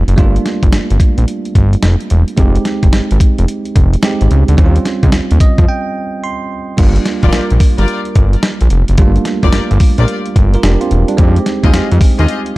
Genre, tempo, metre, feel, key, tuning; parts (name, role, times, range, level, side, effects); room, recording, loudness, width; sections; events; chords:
R&B, new jack swing; 109 BPM; 4/4; swing 64% on 16ths; A4 = 440 Hz
bell-like tine electric piano; accompaniment; 0.0-12.6 s; G3 to C6; -18 LUFS; right 3 dB
fat analog bass; bass; 0.0-12.3 s; E1 to F2; -11 LUFS; equal
dusty soul sampler-style drum kit; drums; 0.1-12.6 s; crash cymbal, hi-hat, kick drum, snare drum; -12 LUFS; equal
rich symphonic string section; stabs; 7.2-12.3 s; F4 to Eb5; -21 LUFS; left 4 dB; digital delay
digital ambience; dark, warm production; -9 LUFS; side -19 dB against mid
0.0-6.8 A section; 6.8-12.6 B section
tine electric piano fill 5.1-6.8; break 5.7-6.8
0.0 Gm7; 2.4 Fm9; 4.6 Eb13; 6.8 Gm7; 11.2 Fm9